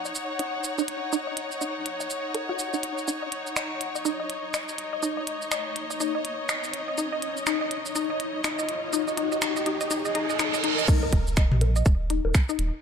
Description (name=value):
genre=minimal techno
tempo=123 BPM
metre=4/4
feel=swing 60% on 16ths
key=Eb minor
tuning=A4 = 440 Hz
part: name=round analog bass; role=bass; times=0.0-12.7 s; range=Eb1 to Eb2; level=-26 LUFS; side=equal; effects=sidechain pumping, high-pass filter
part: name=rich studio string section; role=texture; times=0.0-10.9 s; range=Eb4 to Gb5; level=-31 LUFS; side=left 2 dB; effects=sidechain pumping
part: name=resonant blip pluck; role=riff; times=0.1-12.5 s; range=Eb4 to Eb5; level=-30 LUFS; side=left 2 dB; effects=chorus, sidechain pumping, ping-pong delay
part: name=minimal click drum kit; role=drums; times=0.1-12.7 s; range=crash cymbal, finger snaps, hi-hat, shaker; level=-32 LUFS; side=right 1 dB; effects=overdrive, high-pass filter on perc, high-pass filter on hats, high-pass filter on snare, high-pass filter on cymbals
part: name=riser, reverse cymbal and impact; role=sound effects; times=4.5-12.8 s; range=none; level=-32 LUFS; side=right 2 dB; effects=none
part: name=electronic kick drum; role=drums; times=10.9-12.5 s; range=none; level=-20 LUFS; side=equal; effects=overdrive
part: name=electronic bongos and toms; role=percussion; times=11.0-12.3 s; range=none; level=-27 LUFS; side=left 2 dB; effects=digital delay
room=moderate plate reverb, RT60 1.8 s, digital ambience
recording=none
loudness=-24 LUFS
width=side -7 dB against mid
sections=0.0-10.9 A section; 10.9-12.8 B section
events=build-up 0.0-10.9; filter sweep on synth arpeggio sound 0.0-10.9; riser 4.5-10.9; reverse cymbal 9.9-10.9; drop 10.9-12.8; impact 10.9-12.8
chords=0.0 Ebm7; 10.9 Eb5